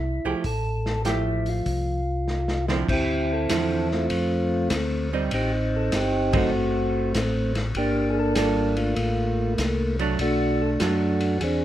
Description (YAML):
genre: soul jazz organ trio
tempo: 98 BPM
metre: 4/4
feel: swing 68% on 8ths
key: unclear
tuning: A4 = 440 Hz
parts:
  - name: percussive tonewheel organ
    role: melody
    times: 0.0-11.6 s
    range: A3 to A4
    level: -24 LUFS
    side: equal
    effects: slow rotary speaker, plate reverb
  - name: mellow tonewheel organ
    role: bass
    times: 0.0-11.6 s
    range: F#1 to F#2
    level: -27 LUFS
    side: left 1 dB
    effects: chorus vibrato, slow rotary speaker
  - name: archtop guitar, miked and amplified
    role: accompaniment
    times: 0.3-11.4 s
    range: D3 to A4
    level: -28 LUFS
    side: right 6 dB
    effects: none
  - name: vintage drum kit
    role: drums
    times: 0.4-11.6 s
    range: crash cymbal, hi-hat, kick drum, ride cymbal, snare drum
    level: -30 LUFS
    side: left 1 dB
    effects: none
room: moderate large studio reverb, RT60 0.8 s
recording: none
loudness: -22 LUFS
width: side -12 dB against mid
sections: 0.0-2.9 A section; 2.9-11.6 B section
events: drum fill 2.3-2.9; band accent 6.2-6.5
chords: 0.0 Fmaj9; 2.9 Dm9; 5.3 Am7b5; 6.5 F#dim; 7.8 Gm9; 10.2 Bm7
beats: | 0.45 1.06 1.67 2.28 | 2.88 3.49 4.10 4.71 | 5.32 5.93 6.54 7.15 | 7.76 8.37 8.97 9.58 | 10.19 10.80 11.41